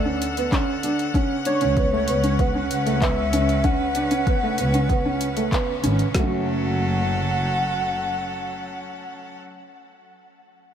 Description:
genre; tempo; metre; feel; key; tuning
piano and strings electronica; 96 BPM; 4/4; straight; F# minor; A4 = 440 Hz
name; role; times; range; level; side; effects
warm velvety synth lead; melody; 0.0-9.4 s; C#5 to F#5; -27 LUFS; equal; chorus, tape echo
clear string quartet; sustained chords; 0.0-9.4 s; C#3 to F#5; -29 LUFS; left 2 dB; sidechain pumping
dark chamber double bass section; bass; 0.0-8.0 s; F#1 to D2; -26 LUFS; left 1 dB; sidechain pumping
dark upright piano; riff; 0.1-9.8 s; F#3 to F#4; -25 LUFS; right 3 dB; tape echo
deep house drum kit; drums; 0.2-6.1 s; handclaps, hi-hat; -32 LUFS; left 1 dB; none
deep house drum kit; drums; 0.5-6.3 s; kick drum, snare drum; -23 LUFS; left 1 dB; none
room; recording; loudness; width
light reverb; none; -20 LUFS; side -9 dB against mid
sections
0.0-6.1 A section; 6.1-8.6 B section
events
drop 0.0-6.1; band accent 5.5-5.8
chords
0.0 D; 1.1 C#7sus4; 6.1 F#m

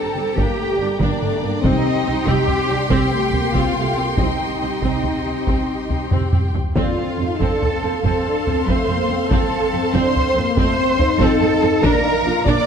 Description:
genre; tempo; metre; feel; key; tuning
cinematic, epic orchestral film score; 95 BPM (dotted quarters); 12/8; straight; unclear; A4 = 441 Hz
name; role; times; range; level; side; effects
rich studio violin section; melody; 0.0-12.7 s; D5 to D6; -29 LUFS; left 4 dB; none
rich studio violin section; second line; 0.0-12.7 s; F5 to C6; -28 LUFS; left 2 dB; none
warm symphonic viola section; accompaniment; 0.0-12.7 s; C4 to Bb4; -25 LUFS; right 3 dB; none
mellow French horn section; sustained chords; 0.0-12.7 s; G3 to F4; -24 LUFS; left 5 dB; none
rich symphonic cello section; bass; 0.0-12.7 s; D4 to D5; -22 LUFS; right 2 dB; none
warm symphonic double bass section; bass; 0.2-12.5 s; G1 to F2; -24 LUFS; right 3 dB; none
taiko ensemble; drums; 0.4-12.7 s; none; -22 LUFS; left 1 dB; none
room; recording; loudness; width
wet concert hall reverb, RT60 1.9 s; none; -16 LUFS; side -7 dB against mid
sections
0.0-12.7 A section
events
drum fill 6.1-6.8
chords
0.0 Gm; 1.6 Cm; 6.8 F; 11.8 Bb

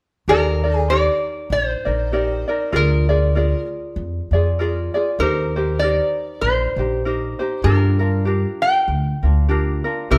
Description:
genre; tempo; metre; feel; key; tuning
Hawaiian; 98 BPM; 4/4; swing 58% on 8ths; Eb major; A4 = 435 Hz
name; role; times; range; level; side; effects
metal-body resonator slide guitar; melody; 0.3-10.2 s; Bb4 to G5; -23 LUFS; equal; none
ukulele; accompaniment; 0.3-10.2 s; C4 to D5; -25 LUFS; equal; none
upright bass; bass; 0.3-10.2 s; Bb1 to G2; -22 LUFS; equal; none
room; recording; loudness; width
moderate stone room reverb, RT60 1.0 s; band playing live in one room; -19 LUFS; mono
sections
0.3-10.2 A section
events
none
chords
0.3 Ebmaj7; 2.7 Bb7/D; 5.2 Eb6; 7.6 Gm7

